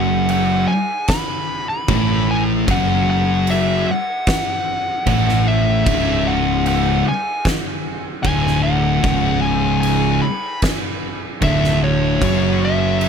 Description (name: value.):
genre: stoner and doom metal.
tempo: 76 BPM.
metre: 4/4.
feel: straight.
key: unclear.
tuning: A4 = 440 Hz.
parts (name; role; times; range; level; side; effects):
fuzz lead guitar; melody; 0.0-13.1 s; C#5 to B5; -22 LUFS; left 1 dB; distortion, tape echo.
thick fuzz guitar; riff; 0.0-13.1 s; C#2 to A3; -20 LUFS; left 13 dB; distortion.
thick fuzz guitar; riff; 0.0-13.1 s; C#2 to A3; -20 LUFS; right 11 dB; distortion.
fuzz fingered electric bass; bass; 0.0-13.1 s; C#1 to A1; -22 LUFS; equal; overdrive.
oversized low-tuned drum kit; drums; 0.3-13.1 s; crash cymbal, kick drum, snare drum; -23 LUFS; right 1 dB; none.
room: little or no reverb.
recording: none.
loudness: -15 LUFS.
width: side -7 dB against mid.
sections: 0.0-13.1 A section.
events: none.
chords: 0.0 F#madd11; 5.9 E13/C# (rootless); 12.2 F#5.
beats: 0.29 1.09 1.89 | 2.68 3.48 4.27 5.07 | 5.86 6.66 7.45 8.24 | 9.04 9.83 10.63 11.42 | 12.21 13.00.